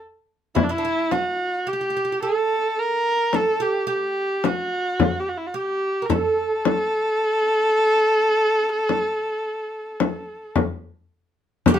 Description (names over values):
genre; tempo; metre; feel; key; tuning
Turkish makam ensemble; 108 BPM (eighths); 10/8; straight; A makam hicaz; A4 = 440 Hz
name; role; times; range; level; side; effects
warm kamancheh; melody; 0.6-11.8 s; D4 to Bb4; -21 LUFS; equal; none
oud; second line; 0.6-11.8 s; D4 to Bb4; -27 LUFS; right 6 dB; none
frame drum; percussion; 0.6-11.8 s; none; -20 LUFS; left 4 dB; none
riq; percussion; 11.7-11.8 s; none; -26 LUFS; right 10 dB; none
room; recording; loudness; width
light reverb; minimal, uncompressed stereo recording; -20 LUFS; side -10 dB against mid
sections
0.0-11.7 A section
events
none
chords
none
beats
0.00 | 0.56 1.11 1.67 2.22 2.78 3.33 3.89 4.45 5.00 5.56 | 6.11 6.67 7.22 7.78 8.34 8.89 9.45 10.01 10.56 11.12 | 11.67